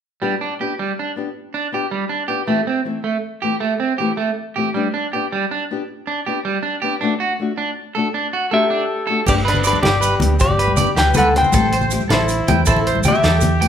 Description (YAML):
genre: highlife guitar band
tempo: 106 BPM (dotted quarters)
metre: 12/8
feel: straight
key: G major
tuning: A4 = 439 Hz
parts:
  - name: nylon-string guitar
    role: accompaniment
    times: 0.2-13.7 s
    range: E3 to G4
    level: -24 LUFS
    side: left 5 dB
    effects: none
  - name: electric guitar at the edge of break-up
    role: arpeggios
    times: 0.2-13.7 s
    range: G3 to G5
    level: -21 LUFS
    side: right 4 dB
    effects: none
  - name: semi-hollow electric guitar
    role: melody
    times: 8.5-13.7 s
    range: D4 to G5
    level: -18 LUFS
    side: left 1 dB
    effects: none
  - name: warm trumpet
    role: second line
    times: 8.5-13.7 s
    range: D4 to C5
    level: -26 LUFS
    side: left 2 dB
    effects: none
  - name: hollow-body short-scale fingered electric bass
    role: bass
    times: 9.3-13.7 s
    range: G1 to E2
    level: -20 LUFS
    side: right 1 dB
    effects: none
  - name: warm soul drum kit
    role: drums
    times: 9.3-13.7 s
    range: crash cymbal, hi-hat, kick drum, snare drum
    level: -22 LUFS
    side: equal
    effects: none
  - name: congas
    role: percussion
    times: 9.3-13.7 s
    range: none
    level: -22 LUFS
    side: left 2 dB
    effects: none
  - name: maracas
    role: percussion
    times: 9.3-13.5 s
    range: none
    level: -30 LUFS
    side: right 7 dB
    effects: none
room: moderate large studio reverb, RT60 1.1 s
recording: band playing live in one room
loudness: -16 LUFS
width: side -8 dB against mid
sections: 0.2-9.3 A section; 9.3-13.7 B section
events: none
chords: 0.2 G; 2.5 Am7; 4.8 G; 7.0 D; 9.3 G; 11.5 Am7